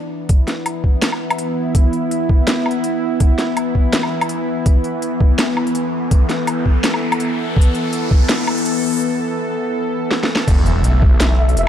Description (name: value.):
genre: half-time drum and bass.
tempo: 165 BPM.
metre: 4/4.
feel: swing 56% on 16ths, half-time.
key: unclear.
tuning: A4 = 440 Hz.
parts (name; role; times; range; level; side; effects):
bowed-like drone; sustained chords; 0.0-11.7 s; E3 to A4; -20 LUFS; left 1 dB; built-in reverb, sidechain pumping.
drum and bass drum kit; drums; 0.3-11.6 s; crash cymbal, hi-hat, snare drum, woodblock; -20 LUFS; equal; none.
electronic kick drum; drums; 0.3-8.2, 10.5-11.1 s; none; -12 LUFS; equal; overdrive.
riser and impact; sound effects; 5.8-11.7 s; none; -26 LUFS; equal; none.
phased detuned saw bass; bass; 10.5-11.7 s; E1 to B1; -14 LUFS; equal; phaser.
flickering grainy texture; texture; 10.7-11.7 s; E5; -24 LUFS; left 2 dB; built-in reverb.
room: light reverb.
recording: dark, warm production.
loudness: -14 LUFS.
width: side -10 dB against mid.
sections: 0.0-10.5 A section; 10.5-11.7 B section.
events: build-up 0.0-10.5; riser 5.8-9.0; break 9.0-10.5; drum fill 10.1-10.5; drop 10.5-11.7; impact 10.5-11.7.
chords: 0.0 E5.